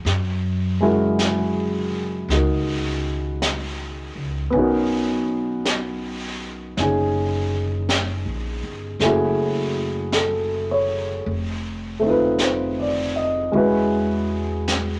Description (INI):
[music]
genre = jazz ballad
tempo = 54 BPM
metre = 4/4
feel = swing 67% on 8ths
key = unclear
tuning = A4 = 442 Hz
[part]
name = warm grand piano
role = accompaniment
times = 0.0-15.0 s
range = G#3 to Eb5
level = -24 LUFS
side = equal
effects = none
[part]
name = upright bass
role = bass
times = 0.0-15.0 s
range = E1 to F#2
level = -29 LUFS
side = equal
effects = none
[part]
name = jazz brush drum kit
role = drums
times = 0.1-15.0 s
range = brushed snare drum, hi-hat, snare drum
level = -30 LUFS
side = equal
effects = none
[sound]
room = moderate studio reverb, RT60 0.6 s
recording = none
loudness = -22 LUFS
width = mono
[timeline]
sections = 0.0-15.0 A section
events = none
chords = 0.0 F#7; 4.5 Bmaj9; 9.0 F#m9; 11.3 F7#11; 13.5 E69